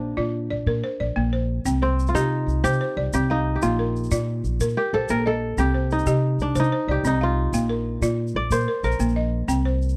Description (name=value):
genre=west african traditional, West African string and xylophone music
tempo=122 BPM (dotted quarters)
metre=12/8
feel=straight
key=unclear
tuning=A4 = 440 Hz
part: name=kora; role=melody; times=0.0-10.0 s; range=C4 to D5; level=-28 LUFS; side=equal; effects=none
part: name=balafon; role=arpeggios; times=0.0-10.0 s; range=Bb3 to G5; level=-28 LUFS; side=equal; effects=none
part: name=upright bass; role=bass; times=0.0-9.9 s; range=Bb1 to C3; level=-26 LUFS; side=equal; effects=none
part: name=tube shaker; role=percussion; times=1.7-9.9 s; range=none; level=-40 LUFS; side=equal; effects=none
room=small room ambience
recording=dry, close 1970s-style studio recording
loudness=-23 LUFS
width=mono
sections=0.0-1.7 A section; 1.7-10.0 B section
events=kora solo 1.7-10.0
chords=0.0 Bb; 1.7 Cm; 3.6 Bb; 5.6 Cm; 7.5 Bb